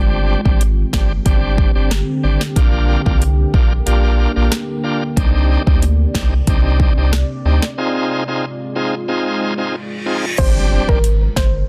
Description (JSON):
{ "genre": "dancehall", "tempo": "92 BPM", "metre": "4/4", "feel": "straight", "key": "unclear", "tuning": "A4 = 442 Hz", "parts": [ { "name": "bright tonewheel organ", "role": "accompaniment", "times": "0.0-11.0 s", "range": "G3 to Ab4", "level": "-23 LUFS", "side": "equal", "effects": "overdrive, fast rotary speaker, sidechain pumping" }, { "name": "deep dark ambient pad", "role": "sustained chords", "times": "0.0-10.4 s", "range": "C3 to D5", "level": "-27 LUFS", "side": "equal", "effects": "chorus, built-in reverb, sidechain pumping" }, { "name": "warm sub bass", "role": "bass", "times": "0.0-11.6 s", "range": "G1 to D2", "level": "-18 LUFS", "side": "equal", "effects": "none" }, { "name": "afro-pop drum kit", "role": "drums", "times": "0.5-11.5 s", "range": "crash cymbal, hi-hat, kick drum, rim click, snare drum", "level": "-18 LUFS", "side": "equal", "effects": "soft clipping on snare" }, { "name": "reverse cymbal and impact", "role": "sound effects", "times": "9.7-11.7 s", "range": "none", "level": "-29 LUFS", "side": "equal", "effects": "none" }, { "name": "soft round pluck", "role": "melody", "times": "10.4-11.5 s", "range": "Bb4 to C5", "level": "-25 LUFS", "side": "equal", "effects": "chorus, tape echo" } ], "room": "little or no reverb", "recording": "dense, heavily limited modern master", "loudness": "-16 LUFS", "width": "mono", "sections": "0.0-10.4 A section; 10.4-11.7 B section", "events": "break 7.8-10.4; reverse cymbal 9.7-10.4; impact 10.4-11.7", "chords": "0.0 Gsus4; 2.6 Bb6; 5.2 Cmadd9; 7.8 Fm7; 10.4 Gsus4" }